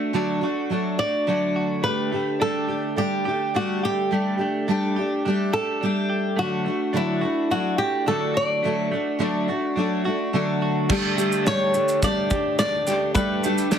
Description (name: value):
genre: acoustic pop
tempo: 106 BPM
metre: 4/4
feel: straight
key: unclear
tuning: A4 = 441 Hz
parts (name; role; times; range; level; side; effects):
- flamenco guitar; melody; 0.0-13.7 s; E4 to D5; -24 LUFS; equal; plate reverb
- fingerpicked steel-string acoustic guitar; accompaniment; 0.0-13.8 s; D3 to G4; -23 LUFS; equal; double-tracked left and right
- direct-recorded clean electric guitar; arpeggios; 0.0-13.8 s; A3 to G4; -31 LUFS; right 5 dB; spring reverb
- loose indie drum kit; drums; 10.9-13.8 s; crash cymbal, kick drum, shaker, snare drum; -26 LUFS; equal; none
room: moderate studio ambience, RT60 0.5 s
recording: heavily compressed radio sound, multiband compression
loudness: -21 LUFS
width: side -8 dB against mid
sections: 0.0-10.9 A section; 10.9-13.8 B section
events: none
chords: 0.0 D; 1.9 Gsus2; 6.4 D; 10.9 Gsus2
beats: 0.15 0.72 1.28 | 1.85 2.42 2.99 3.55 | 4.12 4.68 5.25 5.82 | 6.38 6.95 7.51 8.08 | 8.64 9.21 9.77 10.34 | 10.90 11.46 12.03 12.59 | 13.15 13.72